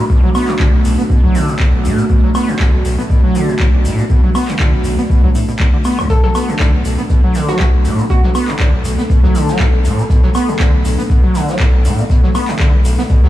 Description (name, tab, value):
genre	acid house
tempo	120 BPM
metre	4/4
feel	swing 55% on 16ths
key	B minor pentatonic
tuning	A4 = 440 Hz
part	dark analog pad	sustained chords	0.0-13.3 s	A3 to A4	-21 LUFS	right 1 dB	chorus, phaser, sidechain pumping
part	overdriven acid bass	riff	0.0-13.3 s	B1 to B3	-16 LUFS	equal	distortion, analog chorus, tape echo
part	electronic kick drum	drums	0.1-13.3 s	none	-13 LUFS	equal	overdrive
part	tube shaker	percussion	0.1-13.2 s	none	-36 LUFS	left 2 dB	none
part	electro analog drum machine	drums	0.3-13.0 s	handclaps, hi-hat, woodblock	-24 LUFS	equal	overdrive
part	hollow square pluck	melody	6.1-8.5 s	F#4 to A4	-23 LUFS	right 1 dB	chorus, tape echo
part	vintage brush drum kit	drums	6.1-13.3 s	hi-hat, snare drum	-32 LUFS	right 1 dB	high-pass filter on hats, high-pass filter on snare, high-pass filter on room
room	light reverb, studio ambience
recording	small room ambience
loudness	-11 LUFS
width	side -14 dB against mid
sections	0.0-13.3 A section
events	none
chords	0.0 Bm7